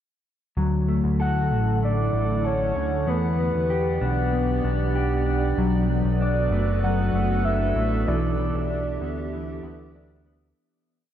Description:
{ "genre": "dream pop", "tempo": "96 BPM", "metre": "4/4", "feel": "straight", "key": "D major", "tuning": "A4 = 440 Hz", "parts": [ { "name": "warbly tape-like pad", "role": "sustained chords", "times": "1.0-10.6 s", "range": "D3 to F#5", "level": "-30 LUFS", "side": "right 1 dB", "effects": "chorus, built-in reverb, shimmer reverb" }, { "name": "mellow electric guitar", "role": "arpeggios", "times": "0.6-11.1 s", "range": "E3 to A4", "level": "-27 LUFS", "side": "left 2 dB", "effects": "wide subtle chorus, shimmer reverb, digital delay" }, { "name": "fat analog bass", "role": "bass", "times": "0.6-10.5 s", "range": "F#1 to E2", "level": "-24 LUFS", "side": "equal", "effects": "none" }, { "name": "soft octave-layered synth lead", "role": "melody", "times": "1.2-9.3 s", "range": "B4 to F#5", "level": "-28 LUFS", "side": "equal", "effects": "chorus, shimmer reverb, digital delay" } ], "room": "moderate concert hall reverb, RT60 1.9 s", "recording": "dark, warm production", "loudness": "-21 LUFS", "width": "side -10 dB against mid", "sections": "0.6-10.6 verse", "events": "fade-out 8.1-10.6", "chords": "0.6 Dmaj7; 3.1 Em7; 5.6 Bm7; 8.1 G6/B" }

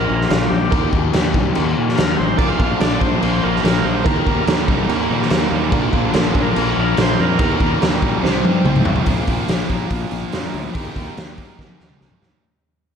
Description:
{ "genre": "classic rock", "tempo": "144 BPM", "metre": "4/4", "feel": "straight", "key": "unclear", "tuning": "A4 = 440 Hz", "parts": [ { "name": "overdriven tonewheel organ", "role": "melody", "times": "0.0-7.8 s", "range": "F4 to F5", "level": "-24 LUFS", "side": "equal", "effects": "slow rotary speaker, slapback echo" }, { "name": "bright reed electric piano", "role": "accompaniment", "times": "0.0-9.0 s", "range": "Bb3 to C5", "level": "-27 LUFS", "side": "right 10 dB", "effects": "fast tremolo" }, { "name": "raw garage guitar", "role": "riff", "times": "0.0-12.4 s", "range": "Bb2 to C5", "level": "-23 LUFS", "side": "left 10 dB", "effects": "overdrive, slapback echo" }, { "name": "fuzz fingered electric bass", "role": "bass", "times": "0.0-12.4 s", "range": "A1 to Eb3", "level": "-23 LUFS", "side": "equal", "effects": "overdrive" }, { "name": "raw garage drum kit", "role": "drums", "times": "0.2-12.4 s", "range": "crash cymbal, hi-hat, kick drum, snare drum, toms", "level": "-18 LUFS", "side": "equal", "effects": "none" }, { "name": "tight distorted guitar", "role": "riff", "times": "2.4-12.4 s", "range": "Bb2 to Eb4", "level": "-25 LUFS", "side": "right 11 dB", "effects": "distortion, slapback echo" } ], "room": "light reverb, studio reverb", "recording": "none", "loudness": "-15 LUFS", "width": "side -7 dB against mid", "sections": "0.0-9.1 A section; 9.1-12.4 B section", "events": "drum fill 8.2-9.1, 11.6-12.4; fade-out 9.1-12.4", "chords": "0.0 Bb; 0.7 Eb; 2.4 Bb; 4.1 Eb; 5.7 Bb; 7.4 Eb; 8.2 Cm; 9.1 Bb; 10.7 Eb" }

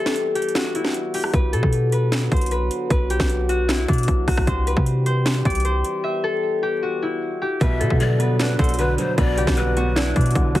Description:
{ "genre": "hip hop, trap", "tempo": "153 BPM", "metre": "4/4", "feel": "half-time", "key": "unclear", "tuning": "A4 = 436 Hz", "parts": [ { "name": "concert harp", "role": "melody", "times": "0.0-10.6 s", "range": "D4 to E5", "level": "-24 LUFS", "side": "left 2 dB", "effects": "low-pass filter, digital delay" }, { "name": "dark French horn section", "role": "sustained chords", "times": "0.0-10.6 s", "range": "D3 to G4", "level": "-29 LUFS", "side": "left 1 dB", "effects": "stereo widening" }, { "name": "trap drum kit", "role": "drums", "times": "0.1-10.6 s", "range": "hi-hat, kick drum, rim click, snare drum", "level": "-22 LUFS", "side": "equal", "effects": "overdrive" }, { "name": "warm 808-style bass", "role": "bass", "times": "1.3-10.6 s", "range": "B1 to C3", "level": "-21 LUFS", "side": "equal", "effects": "none" }, { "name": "breathy large pan pipes", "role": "second line", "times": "7.6-10.5 s", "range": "A4 to E5", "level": "-27 LUFS", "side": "left 3 dB", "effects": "digital delay" }, { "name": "dark baby grand piano", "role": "accompaniment", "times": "7.6-10.6 s", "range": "B2 to D4", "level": "-24 LUFS", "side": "right 2 dB", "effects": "low-pass filter" } ], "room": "small room reverb", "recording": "heavily compressed radio sound, vinyl crackle", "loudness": "-18 LUFS", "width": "side -14 dB against mid", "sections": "0.0-7.6 A section; 7.6-10.6 B section", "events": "break 0.0-1.3, 6.0-7.6", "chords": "0.0 Em; 1.3 Bm; 4.5 C; 6.0 Em; 7.6 Bm" }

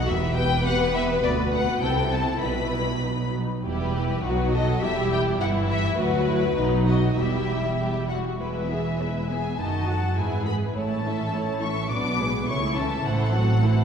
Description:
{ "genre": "quick classical-period movement for string orchestra", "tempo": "103 BPM", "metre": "2/4", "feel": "rubato", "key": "E minor, E major from 8.4 s", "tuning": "A4 = 440 Hz", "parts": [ { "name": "warm studio violin section", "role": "melody", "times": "0.0-13.8 s", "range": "B4 to D6", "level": "-29 LUFS", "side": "left 5 dB", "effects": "none" }, { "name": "warm studio violin section", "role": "second line", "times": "0.0-13.8 s", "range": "D#4 to F#5", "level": "-29 LUFS", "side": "left 2 dB", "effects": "none" }, { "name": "warm studio viola section", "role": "accompaniment", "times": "0.0-13.8 s", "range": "D#3 to G#4", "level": "-28 LUFS", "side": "equal", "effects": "none" }, { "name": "dark studio cello section", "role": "bass", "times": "0.0-13.8 s", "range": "D2 to C#3", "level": "-28 LUFS", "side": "right 2 dB", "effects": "none" }, { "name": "rich studio double bass section", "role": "bass", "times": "0.0-13.8 s", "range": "E1 to D2", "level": "-28 LUFS", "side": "right 2 dB", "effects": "none" } ], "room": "wet concert hall reverb, RT60 2.3 s", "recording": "heard from further back in the room", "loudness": "-22 LUFS", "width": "side -7 dB against mid", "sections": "0.0-8.4 A section; 8.4-13.8 B section", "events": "none", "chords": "0.1 Em; 1.2 Bm/D; 1.8 Am/C; 2.4 Em/B; 3.0 B; 3.6 Em; 4.2 B7; 4.8 Em; 6.0 Bm/D; 6.6 B; 7.2 Em; 8.4 E; 9.6 D#dim/F#; 10.2 E/G#; 10.8 A; 11.9 G#dim/B; 12.5 A/C#; 13.1 F#m7b5/A" }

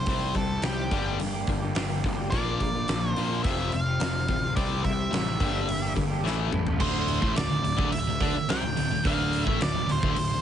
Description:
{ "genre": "quiet-loud alternative rock", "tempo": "107 BPM", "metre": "4/4", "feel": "straight", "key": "D minor", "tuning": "A4 = 440 Hz", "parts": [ { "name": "octave-fuzz lead guitar", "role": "melody", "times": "0.0-10.4 s", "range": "G4 to G5", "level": "-31 LUFS", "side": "right 1 dB", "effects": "distortion, analog delay" }, { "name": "electric guitar through a small old amp", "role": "arpeggios", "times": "0.0-6.8 s", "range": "F2 to C5", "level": "-34 LUFS", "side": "right 4 dB", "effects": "analog chorus" }, { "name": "distorted electric guitar", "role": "riff", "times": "0.0-10.4 s", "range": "D2 to D4", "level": "-31 LUFS", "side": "left 9 dB", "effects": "overdrive" }, { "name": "fuzz picked electric bass", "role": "bass", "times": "0.0-10.4 s", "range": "D1 to D2", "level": "-31 LUFS", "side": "equal", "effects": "overdrive" }, { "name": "huge arena drum kit", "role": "drums", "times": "0.1-10.3 s", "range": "crash cymbal, hi-hat, kick drum, snare drum, toms", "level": "-30 LUFS", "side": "right 1 dB", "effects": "none" }, { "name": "thick fuzz guitar", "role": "riff", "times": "6.8-10.4 s", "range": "D2 to D4", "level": "-31 LUFS", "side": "right 11 dB", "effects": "distortion" } ], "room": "little or no reverb", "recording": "heavily compressed radio sound, nothing above 10.3 kHz", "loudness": "-24 LUFS", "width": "side -9 dB against mid", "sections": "0.0-6.8 A section; 6.8-10.4 B section", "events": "drum fill 6.2-6.8", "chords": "0.1 C; 0.9 Gm; 2.3 Bb; 3.4 Fsus2; 4.6 C; 5.4 Gm; 6.2 A; 6.8 D5" }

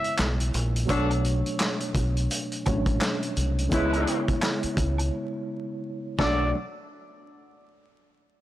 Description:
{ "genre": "hip hop, boom-bap hip-hop", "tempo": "85 BPM", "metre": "4/4", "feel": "swing 59% on 16ths", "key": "B dorian", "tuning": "A4 = 438 Hz", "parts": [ { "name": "trumpet with plunger mute", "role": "melody", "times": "0.0-0.1, 6.2-6.5 s", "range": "D5 to E5", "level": "-32 LUFS", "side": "equal", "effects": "high-pass filter, low-pass filter, slapback echo" }, { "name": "tine electric piano", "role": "accompaniment", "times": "0.0-6.6 s", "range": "B2 to D5", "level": "-30 LUFS", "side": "right 1 dB", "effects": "overdrive, fast stereo tremolo, cassette tape, high-pass filter, low-pass filter" }, { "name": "vintage drum kit", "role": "drums", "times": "0.0-6.4 s", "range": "handclaps, hi-hat, kick drum, snare drum", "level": "-28 LUFS", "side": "equal", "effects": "none" }, { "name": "deep dub fingered electric bass", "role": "bass", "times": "0.2-6.5 s", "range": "A1 to C#2", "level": "-26 LUFS", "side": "equal", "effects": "tube saturation" }, { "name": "egg shaker and woodblock", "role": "percussion", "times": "0.2-6.5 s", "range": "none", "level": "-41 LUFS", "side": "right 2 dB", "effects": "none" }, { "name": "warm horn section", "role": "stabs", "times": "0.9-6.4 s", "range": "F#3 to B4", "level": "-31 LUFS", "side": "left 1 dB", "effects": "high-pass filter, low-pass filter, slapback echo" } ], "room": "light reverb, studio reverb", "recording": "blown-out, overdriven recording, vinyl crackle, overdrive", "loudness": "-24 LUFS", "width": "side -14 dB against mid", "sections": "0.0-6.5 A section; 6.5-8.4 B section", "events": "break 5.1-6.5", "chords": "0.0 C#m7; 0.9 Bm9; 3.7 C#m7; 6.2 Bm7; 6.5 N.C." }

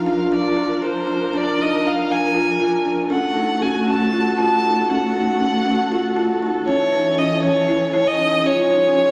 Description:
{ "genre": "contemporary instrumental, chamber music in an uneven meter", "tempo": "236 BPM (eighths)", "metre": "7/8", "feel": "straight", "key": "unclear", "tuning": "A4 = 440 Hz", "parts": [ { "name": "clear violin", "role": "melody", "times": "0.0-9.1 s", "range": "C5 to A5", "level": "-22 LUFS", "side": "equal", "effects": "none" }, { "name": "warm French horn", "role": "second line", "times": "0.0-9.1 s", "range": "E4 to A4", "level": "-28 LUFS", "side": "equal", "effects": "none" }, { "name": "muted symphonic string section", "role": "sustained chords", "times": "0.0-9.1 s", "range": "E3 to Bb4", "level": "-26 LUFS", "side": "equal", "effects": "none" }, { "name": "buzzing kalimba", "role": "arpeggios", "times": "0.1-9.1 s", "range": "Db4 to F4", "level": "-24 LUFS", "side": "equal", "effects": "none" } ], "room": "wet recital hall reverb, RT60 1.8 s", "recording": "vinyl crackle", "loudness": "-19 LUFS", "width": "mono", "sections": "0.0-9.1 A section", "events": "none", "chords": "0.0 Bb; 3.1 Gbm; 6.7 A; 8.5 Db" }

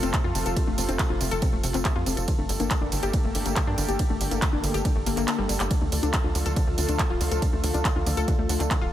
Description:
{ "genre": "uplifting trance", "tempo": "140 BPM", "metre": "4/4", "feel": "straight", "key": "D minor", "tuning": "A4 = 444 Hz", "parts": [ { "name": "lush unison pad", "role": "sustained chords", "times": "0.0-8.9 s", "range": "C3 to A4", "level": "-31 LUFS", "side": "right 1 dB", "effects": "chorus, sidechain pumping" }, { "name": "analog pluck", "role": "arpeggios", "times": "0.0-8.9 s", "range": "C3 to A4", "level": "-30 LUFS", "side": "left 6 dB", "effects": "chorus, sidechain pumping, tape echo" }, { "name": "tight sequencer bass", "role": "bass", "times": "0.0-8.9 s", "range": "D1 to G2", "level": "-28 LUFS", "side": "equal", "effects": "sidechain pumping" }, { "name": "big-room dance drum kit", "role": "drums", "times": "0.0-8.8 s", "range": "congas, handclaps, hi-hat, ride cymbal, tambourine", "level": "-30 LUFS", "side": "right 1 dB", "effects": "none" }, { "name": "electronic kick drum", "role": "drums", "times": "0.1-8.8 s", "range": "none", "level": "-26 LUFS", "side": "equal", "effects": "none" } ], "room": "light reverb", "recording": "none", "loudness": "-22 LUFS", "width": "side -12 dB against mid", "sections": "0.0-8.9 A section", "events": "kick drops out 5.3-5.7; drum fill 5.3-5.7", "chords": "0.0 F; 2.3 Gmadd9; 5.7 Dm" }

